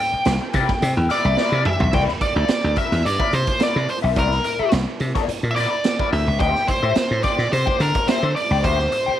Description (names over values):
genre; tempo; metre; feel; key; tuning
funk; 107 BPM; 4/4; straight; unclear; A4 = 441 Hz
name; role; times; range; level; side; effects
nasal lead guitar with a parked wah; melody; 0.0-9.2 s; Bb4 to G5; -22 LUFS; equal; overdrive
electric guitar at the edge of break-up; accompaniment; 0.0-9.2 s; E4 to G5; -26 LUFS; left 11 dB; wah
dry thumbed slap bass; bass; 0.1-9.1 s; B1 to D3; -21 LUFS; equal; none
raw garage drum kit; drums; 0.3-9.1 s; crash cymbal, hi-hat, kick drum, snare drum, toms; -23 LUFS; right 2 dB; none
room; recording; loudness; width
light reverb; 1960s-style stereo, vinyl crackle; -17 LUFS; side -11 dB against mid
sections
0.0-1.9 A section; 1.9-9.2 B section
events
drum fill 1.4-1.9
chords
0.0 C9; 6.4 D9sus4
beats
0.27 0.82 1.38 | 1.94 2.49 3.05 3.61 | 4.17 4.73 5.29 5.85 | 6.41 6.97 7.53 8.09 | 8.65